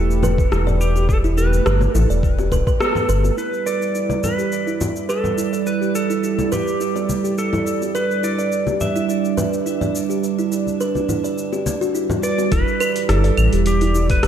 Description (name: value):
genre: organic downtempo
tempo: 105 BPM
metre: 4/4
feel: swing 53% on 16ths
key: E minor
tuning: A4 = 440 Hz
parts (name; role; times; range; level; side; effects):
- clean lap steel guitar; melody; 0.0-14.3 s; G4 to E5; -25 LUFS; equal; ping-pong delay
- warm analog pad; sustained chords; 0.0-14.3 s; G3 to D5; -24 LUFS; right 5 dB; chorus, sidechain pumping
- kalimba; arpeggios; 0.0-14.3 s; B3 to D5; -24 LUFS; right 2 dB; low-pass filter, tape echo
- round analog bass; bass; 0.0-3.3, 12.5-14.3 s; D1 to A1; -17 LUFS; left 1 dB; sidechain pumping
- deep house drum kit; drums; 0.1-14.3 s; claves, hi-hat, rim click, shaker; -28 LUFS; left 1 dB; overdrive
- bongos and congas; percussion; 0.2-12.5 s; none; -27 LUFS; left 2 dB; none
- electronic kick drum; drums; 0.4-2.8, 12.5-14.2 s; none; -20 LUFS; left 1 dB; overdrive
room: moderate plate reverb, RT60 1.9 s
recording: dreamy mix soaked in reverb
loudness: -17 LUFS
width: side -9 dB against mid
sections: 0.0-3.4 A section; 3.4-12.5 B section; 12.5-14.3 C section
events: band accent 2.8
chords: 0.0 Gadd9/E; 3.4 Em7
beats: 0.52 | 1.09 1.66 2.23 2.80 | 3.38 3.95 4.52 5.09 | 5.66 6.23 6.80 7.38 | 7.95 8.52 9.09 9.66 | 10.23 10.80 11.38 11.95 | 12.52 13.09 13.66 14.23